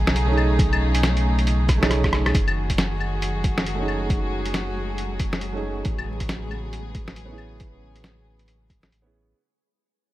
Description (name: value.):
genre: future garage.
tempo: 137 BPM.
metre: 4/4.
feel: swing 61% on 16ths.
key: F# dorian.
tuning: A4 = 440 Hz.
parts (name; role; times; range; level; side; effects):
warm chamber string section; sustained chords; 0.0-9.3 s; C#3 to G#4; -30 LUFS; equal; sidechain pumping.
warm sub bass; bass; 0.0-9.3 s; F#1 to B1; -25 LUFS; equal; tube saturation, sidechain pumping.
lo-fi sampler-style drum kit; drums; 0.1-9.0 s; claves, hi-hat, rim click, snare drum; -25 LUFS; left 1 dB; studio ambience.
felt-muted upright piano; accompaniment; 0.3-9.3 s; A3 to G#4; -30 LUFS; right 4 dB; sidechain pumping, low-pass filter, digital delay.
electronic kick drum; drums; 0.6-8.8 s; none; -24 LUFS; equal; overdrive, studio ambience.
flickering grainy texture; texture; 3.0-9.4 s; G#3 to G#4; -41 LUFS; left 1 dB; none.
room: digital ambience.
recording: vinyl crackle.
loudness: -20 LUFS.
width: side -16 dB against mid.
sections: 0.0-2.3 A section; 2.3-9.3 B section.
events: drum fill 1.7-2.3; fade-out 2.3-9.3.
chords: 0.0 B13; 2.3 F#m69; 5.8 Amaj9.